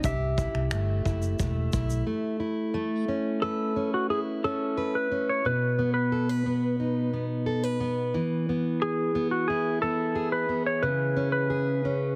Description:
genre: acoustic pop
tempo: 89 BPM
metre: 4/4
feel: straight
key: unclear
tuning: A4 = 437 Hz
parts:
  - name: fingerpicked plugged-in steel-string acoustic guitar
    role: accompaniment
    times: 0.0-12.2 s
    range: B2 to B4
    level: -30 LUFS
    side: equal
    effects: none
  - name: vintage muted fingered electric bass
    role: bass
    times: 0.0-2.0 s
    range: E1 to C2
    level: -30 LUFS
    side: equal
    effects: none
  - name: vintage brush drum kit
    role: drums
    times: 0.0-2.1 s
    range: finger snaps, kick drum, shaker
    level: -35 LUFS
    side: equal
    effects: none
  - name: clean lap steel guitar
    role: melody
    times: 0.1-12.2 s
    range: F#4 to E5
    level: -31 LUFS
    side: equal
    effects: none
room: little or no reverb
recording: heavily compressed radio sound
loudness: -27 LUFS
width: mono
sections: 0.0-2.7 A section; 2.7-12.2 B section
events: break 2.1-2.7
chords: 0.0 C6; 2.7 Aadd9; 5.4 B; 8.1 E; 10.8 C#5

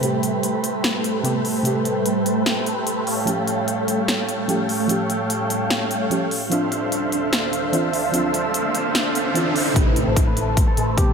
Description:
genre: future bass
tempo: 148 BPM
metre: 4/4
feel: half-time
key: A minor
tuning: A4 = 440 Hz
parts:
  - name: soft round pluck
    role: accompaniment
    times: 0.0-11.1 s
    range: C3 to G4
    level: -27 LUFS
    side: right 2 dB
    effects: chorus, sidechain pumping, digital delay
  - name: ethereal airy pad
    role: sustained chords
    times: 0.0-11.1 s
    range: D2 to E6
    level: -29 LUFS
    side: right 1 dB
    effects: ensemble chorus, built-in reverb, phaser, vintage 12-bit sampler grit, sidechain pumping
  - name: supersaw chords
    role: riff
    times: 0.0-11.1 s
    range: A3 to A5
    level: -22 LUFS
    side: right 1 dB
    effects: phaser, sidechain pumping, low-pass filter, digital delay
  - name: big-room dance drum kit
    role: drums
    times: 0.0-11.1 s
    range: hi-hat, snare drum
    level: -26 LUFS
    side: left 1 dB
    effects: none
  - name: riser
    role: sound effects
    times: 7.5-9.8 s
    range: none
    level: -28 LUFS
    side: right 2 dB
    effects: none
  - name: clean electric guitar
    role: melody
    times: 9.8-11.1 s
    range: G4 to B4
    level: -39 LUFS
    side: left 1 dB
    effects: none
  - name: fat analog bass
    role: bass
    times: 9.8-11.1 s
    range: A1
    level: -25 LUFS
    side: left 1 dB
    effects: tube saturation, sidechain pumping
  - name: electronic kick drum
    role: drums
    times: 9.8-11.1 s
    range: none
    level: -18 LUFS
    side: left 1 dB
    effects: none
room: moderate shimmer reverb, RT60 6.0 s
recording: none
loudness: -18 LUFS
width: side -6 dB against mid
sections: 0.0-9.8 A section; 9.8-11.1 B section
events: filter sweep on ambient pad 0.0-9.8; riser 7.5-9.8; build-up 9.8-11.1; filter sweep on supersaw synth 9.8-11.1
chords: 0.0 Am9; 3.1 A7b13; 6.5 Dm9; 9.8 Am9

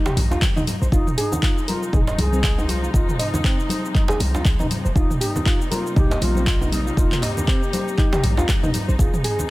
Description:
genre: afro house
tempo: 119 BPM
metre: 4/4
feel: swing 57% on 16ths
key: F minor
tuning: A4 = 440 Hz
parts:
  - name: bass bansuri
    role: melody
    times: 0.0-9.5 s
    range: Eb4 to Ab4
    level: -29 LUFS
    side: left 1 dB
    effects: digital delay
  - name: muted studio string section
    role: sustained chords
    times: 0.0-9.5 s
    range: C3 to Eb4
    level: -31 LUFS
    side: left 1 dB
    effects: sidechain pumping
  - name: nylon-string guitar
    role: arpeggios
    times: 0.0-9.4 s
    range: C4 to Eb5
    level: -28 LUFS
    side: equal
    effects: sidechain pumping, digital delay
  - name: deep house drum kit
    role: drums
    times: 0.1-9.5 s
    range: handclaps, hi-hat, shaker, toms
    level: -26 LUFS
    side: right 1 dB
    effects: none
  - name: djembe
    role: percussion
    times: 0.1-9.5 s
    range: none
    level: -30 LUFS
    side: right 1 dB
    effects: none
  - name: warm 808-style bass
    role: bass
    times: 0.2-9.1 s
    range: Eb1 to C2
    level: -22 LUFS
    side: equal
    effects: sidechain pumping
  - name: congas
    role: percussion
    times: 0.2-9.5 s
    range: none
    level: -29 LUFS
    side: left 1 dB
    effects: none
  - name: electronic kick drum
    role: drums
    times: 0.4-9.1 s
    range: none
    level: -20 LUFS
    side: equal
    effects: none
room: small room ambience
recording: none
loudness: -18 LUFS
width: side -19 dB against mid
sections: 0.0-9.5 A section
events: none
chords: 0.0 Eb6; 0.9 Fm7; 5.0 Eb6; 9.0 Fm7

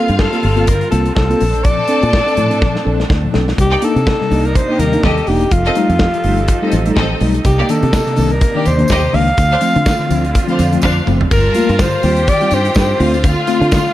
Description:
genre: disco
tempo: 124 BPM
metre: 4/4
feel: swing 56% on 16ths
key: unclear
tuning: A4 = 440 Hz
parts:
  - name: breathy alto saxophone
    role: melody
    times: 0.0-13.9 s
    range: F4 to F5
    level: -18 LUFS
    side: left 1 dB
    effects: none
  - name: clear studio string section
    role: second line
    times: 0.0-13.9 s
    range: Bb3 to A5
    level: -22 LUFS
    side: equal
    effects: slapback echo
  - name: mellow tine electric piano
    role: accompaniment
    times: 0.0-13.9 s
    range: G2 to A4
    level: -18 LUFS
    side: left 2 dB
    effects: medium stereo tremolo
  - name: clear studio string section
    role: sustained chords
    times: 0.0-13.9 s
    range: C3 to A5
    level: -24 LUFS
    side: right 3 dB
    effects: none
  - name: fingered electric bass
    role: bass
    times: 0.1-13.8 s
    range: E1 to D3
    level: -16 LUFS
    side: equal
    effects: none
  - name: modern studio drum kit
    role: drums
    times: 0.1-13.9 s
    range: crash cymbal, hi-hat, kick drum, snare drum, toms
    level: -18 LUFS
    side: equal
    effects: none
  - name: tambourine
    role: percussion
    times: 7.5-13.8 s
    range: none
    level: -35 LUFS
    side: right 7 dB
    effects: none
room: light reverb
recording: dark, warm production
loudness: -11 LUFS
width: side -14 dB against mid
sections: 0.0-3.6 A section; 3.6-11.3 B section; 11.3-13.9 C section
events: drum fill 2.6-3.6, 10.8-11.3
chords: 0.0 Gm11; 1.4 Bbmaj7; 3.6 Cm9; 5.5 F9; 7.5 Cm9; 9.4 Dm7; 11.3 Gm9; 12.0 Eb69; 13.0 Dm7

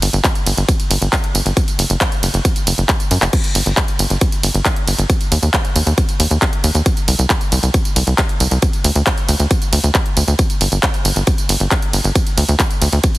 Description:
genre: uplifting trance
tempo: 136 BPM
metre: 4/4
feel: straight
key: unclear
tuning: A4 = 440 Hz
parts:
  - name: tight sequencer bass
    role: bass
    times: 0.0-13.0 s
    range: F#1 to F#2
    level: -15 LUFS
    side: equal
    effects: tube saturation, sidechain pumping
  - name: big-room dance drum kit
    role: drums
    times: 0.0-13.2 s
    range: crash cymbal, handclaps, hi-hat, ride cymbal, tambourine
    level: -18 LUFS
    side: right 1 dB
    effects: sidechain pumping on hats, small room ambience, sidechain pumping on perc, sidechain pumping on cymbals
  - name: electronic kick drum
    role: drums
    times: 0.2-13.1 s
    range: none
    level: -16 LUFS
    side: equal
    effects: small room ambience
room: digital ambience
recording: heavily compressed radio sound, multiband compression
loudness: -13 LUFS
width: side -18 dB against mid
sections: 0.0-13.2 A section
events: drum fill 2.9-3.3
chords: none

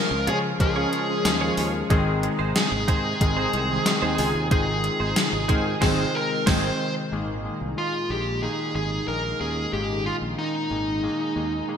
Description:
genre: 1980s-style pop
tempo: 92 BPM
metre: 4/4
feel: straight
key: Ab major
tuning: A4 = 440 Hz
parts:
  - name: dark smooth lead guitar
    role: melody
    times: 0.0-11.8 s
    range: Eb4 to C5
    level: -27 LUFS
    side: right 1 dB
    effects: overdrive
  - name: warm analog keys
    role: accompaniment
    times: 0.0-11.8 s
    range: Eb3 to Bb4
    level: -28 LUFS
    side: left 4 dB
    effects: chorus
  - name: brassy analog pad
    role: sustained chords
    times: 0.0-11.8 s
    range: Bb2 to F4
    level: -33 LUFS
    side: right 1 dB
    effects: chorus
  - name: direct-recorded clean electric guitar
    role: riff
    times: 0.1-6.7 s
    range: Eb4 to Db5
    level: -32 LUFS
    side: right 5 dB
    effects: analog chorus, ping-pong delay
  - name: sustaining fretless electric bass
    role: bass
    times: 0.1-11.6 s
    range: Ab1 to Db3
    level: -30 LUFS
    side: right 1 dB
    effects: none
  - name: gated 80s digital drum machine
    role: drums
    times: 0.3-6.7 s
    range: crash cymbal, hi-hat, kick drum, snare drum, tambourine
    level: -24 LUFS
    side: equal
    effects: gated reverb, gated reverb snare, overdrive
  - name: mellow synth brass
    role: stabs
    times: 0.8-6.7 s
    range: Eb3 to Ab4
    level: -32 LUFS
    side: right 2 dB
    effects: chorus, phaser
room: moderate lush hall reverb, RT60 2.1 s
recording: bright 1980s-style digital production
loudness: -21 LUFS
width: side -8 dB against mid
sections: 0.0-7.1 A section; 7.1-11.8 B section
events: band accent 5.8-7.1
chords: 0.0 Db; 1.9 Ab; 7.1 Absus2

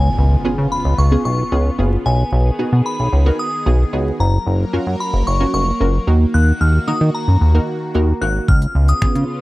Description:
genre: dance-pop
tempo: 112 BPM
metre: 4/4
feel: straight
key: F# major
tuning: A4 = 440 Hz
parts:
  - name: glassy synth bell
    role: melody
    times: 0.0-9.4 s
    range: G#5 to F#6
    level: -23 LUFS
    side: left 2 dB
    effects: chorus, slapback echo
  - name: supersaw pad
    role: sustained chords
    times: 0.0-9.4 s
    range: C#3 to A#4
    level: -26 LUFS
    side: equal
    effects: phaser, sidechain pumping
  - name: chorused synth bass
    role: bass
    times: 0.0-9.2 s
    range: E#1 to D#3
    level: -14 LUFS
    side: equal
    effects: sidechain pumping
  - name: impact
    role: sound effects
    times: 0.0-2.1 s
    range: none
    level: -28 LUFS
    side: equal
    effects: none
  - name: punchy chord stab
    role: accompaniment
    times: 0.4-9.4 s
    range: A#3 to A#4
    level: -22 LUFS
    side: right 1 dB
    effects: chorus, sidechain pumping
  - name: pop drum kit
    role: drums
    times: 8.5-9.3 s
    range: finger snaps, hi-hat, kick drum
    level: -15 LUFS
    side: equal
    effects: none
room: little or no reverb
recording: dry, close 1970s-style studio recording, vinyl crackle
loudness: -14 LUFS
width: side -19 dB against mid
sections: 0.0-9.4 A section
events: impact 0.0-2.1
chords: 0.0 C#7; 2.1 B6; 4.2 F#maj7; 6.1 D#m; 8.5 C#7

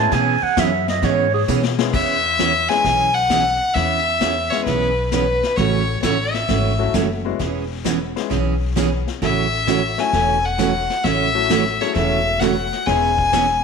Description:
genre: country, western swing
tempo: 132 BPM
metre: 4/4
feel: swing 68% on 8ths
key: E major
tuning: A4 = 440 Hz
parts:
  - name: growling clarinet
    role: second line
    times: 0.0-1.4 s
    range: G#4 to A5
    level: -19 LUFS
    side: right 7 dB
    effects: none
  - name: clear upright piano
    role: accompaniment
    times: 0.0-13.6 s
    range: F#3 to G#4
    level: -26 LUFS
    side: left 13 dB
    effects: none
  - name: upright bass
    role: bass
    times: 0.0-13.6 s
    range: E1 to B2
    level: -24 LUFS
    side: left 2 dB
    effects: none
  - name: picked steel-string acoustic guitar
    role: accompaniment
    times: 0.1-13.5 s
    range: C#3 to G#4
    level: -22 LUFS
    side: right 8 dB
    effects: none
  - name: vintage brush drum kit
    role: drums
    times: 0.1-13.6 s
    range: brushed snare drum, crash cymbal, hi-hat, kick drum, snare drum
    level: -27 LUFS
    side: left 10 dB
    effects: none
  - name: clear fiddle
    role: melody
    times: 1.9-13.6 s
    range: B4 to G#5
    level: -19 LUFS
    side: left 3 dB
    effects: none
room: moderate echo chamber reverb, RT60 1.5 s, small room ambience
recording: 1960s-style stereo with parts hard left and right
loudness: -16 LUFS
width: side -5 dB against mid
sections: 0.0-1.9 A section; 1.9-13.6 B section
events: clarinet solo 0.0-1.9; drum fill 1.5-1.9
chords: 0.0 E6; 5.6 A6; 7.4 E6; 9.2 A6; 12.9 E6

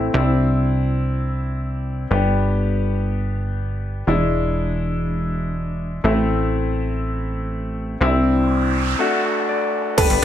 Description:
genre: dance-pop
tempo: 122 BPM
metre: 4/4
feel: straight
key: G major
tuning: A4 = 439 Hz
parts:
  - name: clear concert grand piano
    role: accompaniment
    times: 0.0-10.2 s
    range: G#3 to F#5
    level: -22 LUFS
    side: left 3 dB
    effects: wide subtle chorus, sidechain pumping
  - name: plucky analog bass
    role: bass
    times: 0.0-10.2 s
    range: E1 to C2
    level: -20 LUFS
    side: right 1 dB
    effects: sidechain pumping
  - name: noise sweep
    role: sound effects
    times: 8.3-10.0 s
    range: none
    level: -26 LUFS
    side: right 5 dB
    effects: none
  - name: soft round pluck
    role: melody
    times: 10.0-10.1 s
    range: A4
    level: -20 LUFS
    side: right 7 dB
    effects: chorus
  - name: pop drum kit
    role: drums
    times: 10.0-10.2 s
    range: crash cymbal, hi-hat, kick drum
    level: -18 LUFS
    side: right 1 dB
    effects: none
room: light reverb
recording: bright 1980s-style digital production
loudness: -18 LUFS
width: side -11 dB against mid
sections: 0.0-10.0 A section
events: noise sweep 8.3-10.0; break 9.0-10.0; grand piano fill 9.0-10.0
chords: 0.1 Cadd9; 2.1 G; 4.1 E7; 6.0 Am; 8.0 Cadd9; 9.0 D

